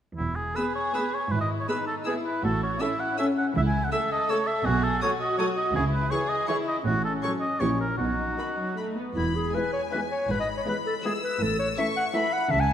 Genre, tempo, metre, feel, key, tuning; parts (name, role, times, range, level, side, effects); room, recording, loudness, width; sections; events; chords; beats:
quick classical-period movement for symphony orchestra; 161 BPM; 3/4; straight; E major; A4 = 440 Hz
warm oboe; second line; 0.2-8.8 s; E4 to G#5; -28 LUFS; right 1 dB
rich studio double bass section; bass; 0.2-12.7 s; E1 to C#2; -31 LUFS; right 2 dB
warm studio cello section; bass; 0.2-12.7 s; E2 to C#3; -32 LUFS; right 2 dB
warm studio violin section; melody; 0.6-12.7 s; G#5 to E6; -36 LUFS; left 5 dB
dark studio violin section; second line; 0.6-12.4 s; B3 to A4; -32 LUFS; left 3 dB
warm studio viola section; accompaniment; 0.6-12.4 s; D#3 to A4; -33 LUFS; equal
clear clarinet; second line; 9.2-12.7 s; E4 to G#5; -26 LUFS; left 2 dB
moderate concert hall reverb, RT60 2.1 s; -24 LUFS; side -9 dB against mid
0.2-9.2 A section; 9.2-12.7 A section
0.2 E; 1.3 E/G#; 2.4 A; 3.6 A/C#; 4.7 B7; 5.8 C#m; 6.9 F#m/A; 7.6 A#m; 8.0 B; 9.2 E; 10.3 E/G#; 11.4 A
| 0.18 0.56 0.94 | 1.31 1.69 2.06 | 2.43 2.80 3.18 | 3.55 3.92 4.29 | 4.66 5.02 5.39 | 5.75 6.12 6.49 | 6.86 7.24 7.61 | 8.00 8.39 8.78 | 9.16 9.54 9.92 | 10.29 10.67 11.04 | 11.41 11.78 12.15 | 12.52